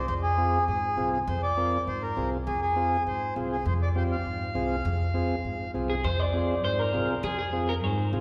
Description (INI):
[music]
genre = latin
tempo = 201 BPM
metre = 4/4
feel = straight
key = F dorian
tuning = A4 = 436 Hz
[part]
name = accordion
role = second line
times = 0.0-5.7 s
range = Ab4 to F5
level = -31 LUFS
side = equal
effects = none
[part]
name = upright bass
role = bass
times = 0.0-8.2 s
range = C2 to Ab2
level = -32 LUFS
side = equal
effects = none
[part]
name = combo organ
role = accompaniment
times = 0.4-8.2 s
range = C4 to Bb4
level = -34 LUFS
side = equal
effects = none
[part]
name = electric guitar through a small old amp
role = melody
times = 5.9-8.1 s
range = Ab4 to D5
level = -31 LUFS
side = equal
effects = spring reverb
[sound]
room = wet church reverb, RT60 2.9 s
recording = recorded in a church or concert hall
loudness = -28 LUFS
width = mono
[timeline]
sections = 0.0-6.0 A section; 6.0-8.2 B section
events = accordion solo 0.0-6.0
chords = 0.0 Fm